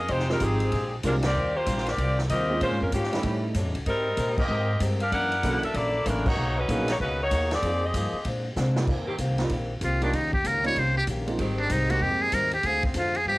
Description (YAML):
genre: jazz, big band swing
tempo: 191 BPM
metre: 4/4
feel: swing 64% on 8ths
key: Eb major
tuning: A4 = 441 Hz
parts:
  - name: clear saxophone section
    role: melody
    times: 0.0-8.3 s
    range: Eb3 to Gb5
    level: -27 LUFS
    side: left 1 dB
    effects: cassette tape
  - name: upright bass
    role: bass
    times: 0.0-13.4 s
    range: F1 to C3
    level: -28 LUFS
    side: equal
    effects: none
  - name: picked steel-string acoustic guitar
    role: accompaniment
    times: 0.1-13.4 s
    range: Gb2 to Bb4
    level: -33 LUFS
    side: left 2 dB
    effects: cassette tape
  - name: swinging big-band drum kit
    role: drums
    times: 0.1-13.2 s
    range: crash cymbal, hi-hat, kick drum, ride cymbal, snare drum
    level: -32 LUFS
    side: equal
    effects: none
  - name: clear concert grand piano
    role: accompaniment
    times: 0.3-12.3 s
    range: F3 to A4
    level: -31 LUFS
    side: right 2 dB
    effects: cassette tape
  - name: clear saxophone section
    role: sustained chords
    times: 9.1-12.3 s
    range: Eb3 to G4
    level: -35 LUFS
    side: equal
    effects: cassette tape
  - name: trumpet with metal mute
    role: melody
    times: 9.8-13.4 s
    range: C4 to Db5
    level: -25 LUFS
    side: equal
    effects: cassette tape
room: light reverb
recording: home recording on cassette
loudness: -23 LUFS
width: side -20 dB against mid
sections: 0.0-8.9 A section; 8.9-13.4 B section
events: band accent 1.2, 4.3, 6.2; drum fill 8.6-8.9; muted trumpet solo 8.9-13.4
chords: 0.1 Fm9; 0.7 Bb13; 1.4 Eb69; 2.6 Bbm7; 3.2 A7#11; 3.9 Abmaj9; 5.1 Gb7alt; 6.4 Bmaj13; 7.6 Fm11; 8.2 Bb9; 8.9 Eb6; 10.1 Eb7; 11.4 Abmaj7; 12.6 Dm7b5